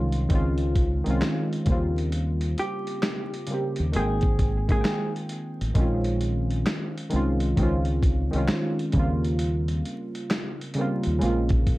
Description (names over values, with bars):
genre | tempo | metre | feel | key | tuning
lo-fi hip hop | 66 BPM | 4/4 | swing 65% on 16ths | unclear | A4 = 440 Hz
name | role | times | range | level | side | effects
vintage hollow-body jazz guitar | melody | 0.0-5.1 s | F4 to Ab4 | -32 LUFS | right 1 dB | low-pass filter, tape echo
warm analog keys | accompaniment | 0.0-11.8 s | Db3 to G5 | -27 LUFS | equal | chorus, low-pass filter
deep dub fingered electric bass | bass | 0.0-11.8 s | Ab1 to Eb2 | -26 LUFS | equal | none
dusty soul sampler-style drum kit | drums | 0.1-11.8 s | handclaps, hi-hat, kick drum, snare drum | -26 LUFS | equal | vintage 12-bit sampler grit
room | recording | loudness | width
light reverb | dark, warm production, vinyl crackle | -23 LUFS | side -18 dB against mid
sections
0.0-11.8 A section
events
none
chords
0.3 Dbmaj9; 1.7 Eb13; 3.9 Abmaj7; 5.8 Bbm11; 7.6 Dbmaj9; 8.9 Eb13; 11.2 Bbm7